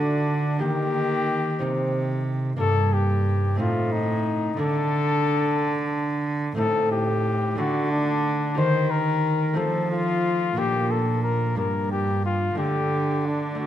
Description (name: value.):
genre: classical, renaissance-style consort dance.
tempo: 60 BPM (dotted quarters).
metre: 6/8.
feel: straight.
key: unclear.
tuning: A4 = 441 Hz.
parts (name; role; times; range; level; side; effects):
mellow cornet; melody; 0.0-13.7 s; D4 to C5; -26 LUFS; left 5 dB; none.
concert harp; accompaniment; 0.0-13.7 s; G2 to G4; -26 LUFS; right 1 dB; none.
rich cello; bass; 0.0-13.7 s; G2 to F3; -26 LUFS; right 3 dB; none.
room: moderate recital hall reverb, RT60 1.4 s.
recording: none.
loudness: -21 LUFS.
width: side -11 dB against mid.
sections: 0.0-13.7 A section.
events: none.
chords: 0.0 D; 0.6 Eb; 1.6 Cm; 2.6 Gm; 3.6 Adim; 4.6 D5; 6.6 Adim; 7.6 D5; 8.6 Eb; 9.6 F; 10.6 Bb; 11.6 Gm; 12.6 Dsus4.